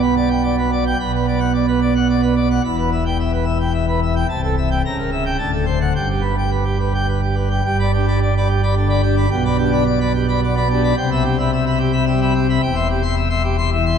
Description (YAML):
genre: classical, organ toccata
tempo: 109 BPM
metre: 3/4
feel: straight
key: G major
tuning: A4 = 439 Hz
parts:
  - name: pipe organ, plenum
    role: solo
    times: 0.0-14.0 s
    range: C1 to C6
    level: -16 LUFS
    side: equal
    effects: none
room: wet church reverb, RT60 4.2 s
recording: dark, warm production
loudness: -16 LUFS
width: side -7 dB against mid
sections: 0.0-7.6 A section; 7.6-14.0 B section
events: none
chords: 0.0 G/B; 1.0 Bm; 2.6 Em; 4.3 Am7/C; 4.8 C#dim7; 5.4 D7; 5.9 G; 9.3 G/B; 11.0 Cmaj7; 12.6 C/E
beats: 0.43 | 0.98 1.53 2.08 | 2.63 3.17 3.72 | 4.28 4.83 5.38 | 5.95 6.51 7.08 | 7.64 8.21 8.76 | 9.31 9.86 10.42 | 10.97 11.52 12.07 | 12.63 13.18 13.72